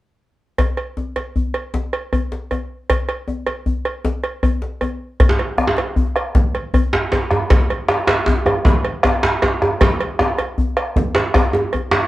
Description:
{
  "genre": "west african traditional, West African drum ensemble",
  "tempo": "104 BPM (dotted quarters)",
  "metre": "12/8",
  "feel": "straight",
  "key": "none",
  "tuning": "none",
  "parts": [
    { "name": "cowbell", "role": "percussion", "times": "0.6-11.9 s", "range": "none", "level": "-22 LUFS", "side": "right 3 dB", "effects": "none" },
    { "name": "djembe", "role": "percussion", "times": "0.6-11.9 s", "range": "none", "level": "-20 LUFS", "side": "left 2 dB", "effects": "none" },
    { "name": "bombo", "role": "percussion", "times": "5.2-12.1 s", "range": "none", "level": "-19 LUFS", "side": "equal", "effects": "none" },
    { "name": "djembe", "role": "percussion", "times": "5.3-12.1 s", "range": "none", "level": "-18 LUFS", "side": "right 1 dB", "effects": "none" }
  ],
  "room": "moderate studio reverb, RT60 0.5 s",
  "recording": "worn, warbling old tape, cassette tape, warbly pitch drift",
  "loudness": "-16 LUFS",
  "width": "side -16 dB against mid",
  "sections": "0.6-5.2 A section; 5.2-12.1 B section",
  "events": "none",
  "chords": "none"
}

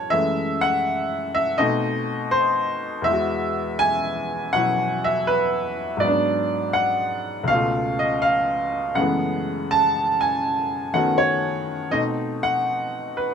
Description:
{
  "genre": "solo jazz",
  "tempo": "81 BPM",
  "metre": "4/4",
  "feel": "swing 69% on 8ths",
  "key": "E major",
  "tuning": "A4 = 440 Hz",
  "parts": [
    { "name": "clear upright piano", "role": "solo", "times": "0.0-13.3 s", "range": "C#2 to A5", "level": "-20 LUFS", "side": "equal", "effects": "none" }
  ],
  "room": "light reverb",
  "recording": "none",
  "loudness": "-20 LUFS",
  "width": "side -7 dB against mid",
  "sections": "0.0-13.3 A section",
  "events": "none",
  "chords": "0.1 F#m9; 1.6 B7b9; 3.1 Eadd9; 6.0 G#m7b5; 7.5 C#7b13; 9.0 F#m11; 11.9 B7b9"
}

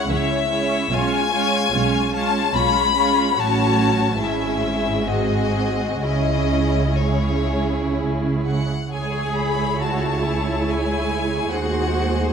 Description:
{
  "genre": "classical, slow romantic movement for string orchestra",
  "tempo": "59-75 BPM",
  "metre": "3/4",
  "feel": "rubato",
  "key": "C# minor",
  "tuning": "A4 = 442 Hz",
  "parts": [
    { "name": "rich chamber violin section", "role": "melody", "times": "0.0-12.3 s", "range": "C#5 to B5", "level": "-23 LUFS", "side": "left 8 dB", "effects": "none" },
    { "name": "warm symphonic violin section", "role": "second line", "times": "0.0-12.3 s", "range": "E4 to C#5", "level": "-26 LUFS", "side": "left 1 dB", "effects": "none" },
    { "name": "rich chamber viola section", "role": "accompaniment", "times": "0.0-12.3 s", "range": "F#3 to E4", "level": "-25 LUFS", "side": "right 5 dB", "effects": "none" },
    { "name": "warm studio double bass section", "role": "bass", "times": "0.1-12.3 s", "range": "G#1 to D#2", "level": "-25 LUFS", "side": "right 2 dB", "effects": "none" },
    { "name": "warm symphonic cello section", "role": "bass", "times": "0.1-12.3 s", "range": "G#2 to G#4", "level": "-27 LUFS", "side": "right 2 dB", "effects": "none" }
  ],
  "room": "moderate concert hall reverb, RT60 2.3 s",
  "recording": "none",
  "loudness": "-18 LUFS",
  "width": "side -6 dB against mid",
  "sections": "0.0-8.9 A section; 8.9-12.3 B section",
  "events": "none",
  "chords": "0.0 C#m; 0.9 C#7/B; 3.4 F#m/A; 4.2 C#m/G#; 5.1 G#7; 6.0 C#m; 11.5 G#7/D#"
}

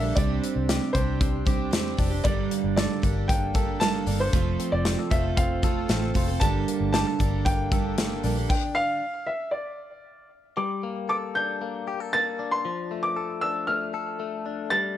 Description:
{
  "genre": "jangly indie pop",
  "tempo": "115 BPM",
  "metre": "4/4",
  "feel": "straight",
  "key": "G minor",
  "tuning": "A4 = 440 Hz",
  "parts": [
    { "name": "warm upright piano", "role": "melody", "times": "0.0-15.0 s", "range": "C5 to A6", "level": "-28 LUFS", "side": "equal", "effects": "none" },
    { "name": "picked twelve-string acoustic guitar", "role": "accompaniment", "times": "0.0-9.0 s", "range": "G2 to A4", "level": "-29 LUFS", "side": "right 9 dB", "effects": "none" },
    { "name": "direct-recorded clean electric guitar", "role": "arpeggios", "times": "0.0-15.0 s", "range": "F3 to A4", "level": "-32 LUFS", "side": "left 6 dB", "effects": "wide subtle chorus" },
    { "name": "vintage muted fingered electric bass", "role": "bass", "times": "0.0-8.5 s", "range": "F1 to E2", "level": "-28 LUFS", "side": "equal", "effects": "none" },
    { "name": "modern studio drum kit", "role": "drums", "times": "0.2-8.6 s", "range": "crash cymbal, hi-hat, kick drum, snare drum", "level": "-26 LUFS", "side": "equal", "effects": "none" }
  ],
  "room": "small room ambience",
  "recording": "dark, warm production",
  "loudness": "-23 LUFS",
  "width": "side -11 dB against mid",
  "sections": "0.0-10.6 A section; 10.6-15.0 A section",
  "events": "stop 8.5-10.6",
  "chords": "0.2 Csus2; 2.3 Gmadd9; 4.3 F; 6.4 Gmadd9; 8.5 N.C.; 10.6 Gmadd9; 12.6 Dm"
}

